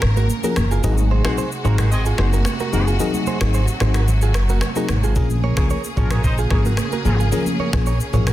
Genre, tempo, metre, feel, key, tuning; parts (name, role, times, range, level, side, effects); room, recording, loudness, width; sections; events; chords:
afrobeats; 111 BPM; 4/4; straight; A4 = 441 Hz
clear studio string section; sustained chords; 0.0-8.3 s; C3 to Bb4; -28 LUFS; equal
upright bass; bass; 0.0-8.3 s; Gb1 to Db2; -18 LUFS; equal
afro-pop drum kit; drums; 0.0-8.3 s; finger snaps, kick drum, rim click, shaker, toms; -23 LUFS; equal; soft clipping on snare
direct-recorded clean electric guitar; riff; 0.2-8.3 s; F4 to Db5; -28 LUFS; right 8 dB; tape echo
congas; percussion; 0.2-8.3 s; -30 LUFS; right 8 dB
FM electric piano; accompaniment; 0.4-8.3 s; F3 to Ab4; -25 LUFS; left 6 dB; chorus
clear horn section; second line; 1.2-7.2 s; F3 to Eb5; -30 LUFS; right 1 dB
studio reverb; dense, heavily limited modern master; -16 LUFS; side -14 dB against mid
0.0-8.3 A section
break 0.0-5.2
0.0 Ab7; 5.2 Bbm7